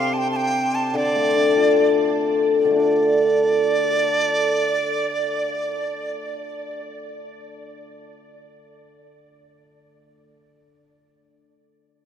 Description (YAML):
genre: chinese traditional, Chinese chamber ensemble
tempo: 56-82 BPM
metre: 2/4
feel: rubato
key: D yu mode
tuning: A4 = 440 Hz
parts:
  - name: breathy dizi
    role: melody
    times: 0.0-6.8 s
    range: D5 to A5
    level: -23 LUFS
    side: right 2 dB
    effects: none
  - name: hammered dulcimer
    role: accompaniment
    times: 0.0-11.5 s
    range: C3 to A4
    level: -20 LUFS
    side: left 2 dB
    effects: none
room: wet huge ambient reverb, RT60 7.8 s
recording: in a vast, echoing space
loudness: -18 LUFS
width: side -9 dB against mid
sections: 0.0-2.8 A section; 2.8-6.9 B section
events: slowing down 0.0-2.8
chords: none